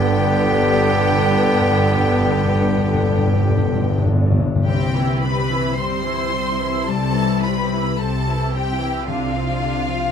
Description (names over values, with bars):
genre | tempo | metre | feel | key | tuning
classical, slow romantic movement for symphony orchestra | 47-56 BPM | 4/4 | rubato | C major | A4 = 440 Hz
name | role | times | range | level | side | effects
warm studio violin section | melody | 0.0-10.1 s | F5 to C6 | -26 LUFS | left 2 dB | none
bright clarinet | second line | 0.0-4.3 s | B3 | -28 LUFS | left 2 dB | none
clear studio violin section | second line | 0.0-10.1 s | F4 to C5 | -30 LUFS | left 2 dB | none
mellow hollow silver concert flute | second line | 0.0-4.0 s | B4 | -28 LUFS | equal | none
warm oboe | second line | 0.0-4.0 s | G4 | -26 LUFS | right 3 dB | none
mellow bassoon | accompaniment | 0.0-4.3 s | D3 | -23 LUFS | right 3 dB | none
rich studio viola section | accompaniment | 0.0-10.1 s | D3 to E4 | -27 LUFS | equal | none
mellow French horn section | sustained chords | 0.0-4.0 s | G3 | -28 LUFS | left 3 dB | none
concert harp | arpeggios | 0.0-10.1 s | G2 to C5 | -25 LUFS | left 11 dB | none
mellow tuba | bass | 0.0-4.4 s | G1+21c | -25 LUFS | right 4 dB | none
warm studio cello section | bass | 0.0-10.0 s | G2 to C3 | -26 LUFS | right 3 dB | none
warm studio double bass section | bass | 0.0-10.0 s | G1 to C2 | -26 LUFS | right 4 dB | none
timpani | percussion | 0.0-10.1 s | G2 to C3 | -22 LUFS | left 2 dB | none
room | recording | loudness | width
moderate recital hall reverb, RT60 1.3 s | close, detailed microphones | -16 LUFS | side -7 dB against mid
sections
0.0-4.6 A section; 4.6-10.1 B section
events
timpani fill 0.0-4.6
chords
0.0 G; 4.6 C; 9.1 Dm7/C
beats
1.02 2.25 3.45 | 4.64 5.77 6.88 7.99 | 9.07